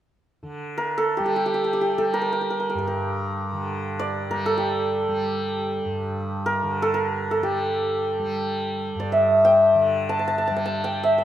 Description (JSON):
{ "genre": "indian classical, Hindustani", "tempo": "free time", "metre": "none", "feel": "none", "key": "G raga shivaranjani", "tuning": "A4 = 441 Hz", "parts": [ { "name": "tanpura", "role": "drone", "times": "0.4-11.2 s", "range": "G2 to G3", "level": "-29 LUFS", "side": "right 1 dB", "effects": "none" }, { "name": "santur", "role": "melody", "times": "0.8-11.2 s", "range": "G4 to A5", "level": "-21 LUFS", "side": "equal", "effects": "none" } ], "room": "moderate recital hall reverb, RT60 1.3 s", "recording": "minimal, uncompressed stereo recording", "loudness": "-21 LUFS", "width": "side -11 dB against mid", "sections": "0.4-11.2 A section", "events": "none", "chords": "none" }